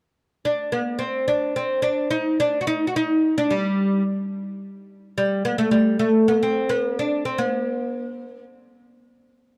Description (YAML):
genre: arabic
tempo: 109 BPM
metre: 4/4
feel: straight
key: unclear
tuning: A4 = 441 Hz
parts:
  - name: oud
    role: solo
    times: 0.5-8.4 s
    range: G3 to F#4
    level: -22 LUFS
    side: equal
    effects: none
room: light reverb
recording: dark, warm production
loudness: -22 LUFS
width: mono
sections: 0.7-5.2 A section; 5.2-9.6 B section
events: none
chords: none